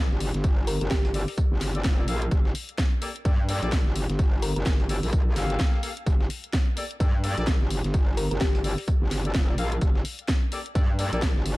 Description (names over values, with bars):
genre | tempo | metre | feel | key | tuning
bass house | 128 BPM | 4/4 | swing 60% on 16ths | G minor | A4 = 440 Hz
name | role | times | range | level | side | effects
metallic wobble bass | bass | 0.0-11.6 s | F1 to G2 | -27 LUFS | equal | distortion, chorus, sidechain pumping
dusty soul sampler-style drum kit | drums | 0.1-11.6 s | hi-hat, snare drum, tambourine | -42 LUFS | equal | none
garage drum kit | drums | 0.2-11.6 s | hi-hat, snare drum | -33 LUFS | equal | none
electronic kick drum | drums | 0.4-11.3 s | none | -23 LUFS | equal | overdrive
thumb-piano-like synth pluck | melody | 0.7-1.6, 4.4-4.6, 8.2-9.1 s | G4 to Bb4 | -34 LUFS | left 1 dB | chorus, tape echo
clear horn section | stabs | 1.1-11.2 s | Bb3 to F5 | -35 LUFS | left 2 dB | sidechain pumping, tape echo
room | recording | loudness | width
little or no reverb | dark, warm production | -22 LUFS | side -20 dB against mid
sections
0.0-11.6 A section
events
none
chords
0.0 Gmadd9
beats
| 0.44 0.91 1.38 1.85 | 2.31 2.78 3.25 3.72 | 4.19 4.66 5.13 5.60 | 6.07 6.53 7.00 7.47 | 7.94 8.41 8.88 9.35 | 9.81 10.28 10.75 11.22